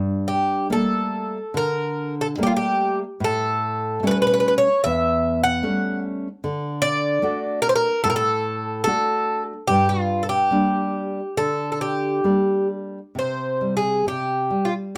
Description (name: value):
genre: fado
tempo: 65-75 BPM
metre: 4/4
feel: rubato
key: G minor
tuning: A4 = 439 Hz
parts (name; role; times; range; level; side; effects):
- nylon-string guitar; accompaniment; 0.0-15.0 s; E2 to F#4; -27 LUFS; equal; none
- Irish bouzouki; melody; 0.3-14.7 s; F4 to F#5; -23 LUFS; equal; none
room: light reverb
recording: close, detailed microphones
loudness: -22 LUFS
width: mono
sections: 0.0-13.2 A section; 13.2-15.0 B section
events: none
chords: 0.0 Gmadd9; 3.2 A7; 6.4 D; 9.7 Gm; 13.2 C5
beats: 0.69 1.54 2.37 | 3.19 4.01 4.82 5.62 | 6.42 7.23 8.04 8.85 | 9.68 10.52 11.37 12.25 | 13.16 14.07 14.95